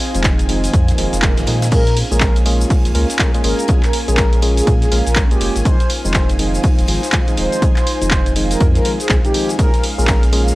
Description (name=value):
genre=deep house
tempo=122 BPM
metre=4/4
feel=swing 60% on 16ths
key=Bb minor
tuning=A4 = 441 Hz
part: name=airy breathy pad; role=sustained chords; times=0.0-10.6 s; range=Ab3 to Eb5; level=-27 LUFS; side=equal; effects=chorus, sidechain pumping
part: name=big rock drum kit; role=drums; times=0.0-10.6 s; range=hi-hat, ride cymbal, snare drum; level=-34 LUFS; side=left 1 dB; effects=none
part: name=punchy analog drum machine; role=drums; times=0.0-10.6 s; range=crash cymbal, handclaps, hi-hat, ride cymbal, shaker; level=-22 LUFS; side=equal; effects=none
part: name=ethereal airy pad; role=texture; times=0.0-10.6 s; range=Db4 to Ab5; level=-28 LUFS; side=right 2 dB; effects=ensemble chorus, built-in reverb, phaser, sidechain pumping
part: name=string machine, violins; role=texture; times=0.0-10.6 s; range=F5 to Ab5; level=-34 LUFS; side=equal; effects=ensemble chorus
part: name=percussive organ stab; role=stabs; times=0.1-10.6 s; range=Eb3 to Bb4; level=-23 LUFS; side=equal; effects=chorus, sidechain pumping
part: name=warm sub bass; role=bass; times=0.1-10.5 s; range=Eb1 to Bb2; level=-18 LUFS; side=equal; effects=sidechain pumping
part: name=electronic kick drum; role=drums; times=0.2-10.2 s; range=none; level=-15 LUFS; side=equal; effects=none
part: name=swell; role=sound effects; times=0.9-1.7 s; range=none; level=-29 LUFS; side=right 5 dB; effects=none
part: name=mellow horn-like synth lead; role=melody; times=1.7-10.2 s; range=G4 to C5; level=-23 LUFS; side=equal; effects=analog chorus, tape echo
room=digital ambience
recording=dry, gritty hardware recording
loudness=-13 LUFS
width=side -19 dB against mid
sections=0.0-10.6 A section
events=swell 0.9-1.7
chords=0.0 Fm7; 1.7 Bbm7; 5.7 Fm7; 9.6 Bbm7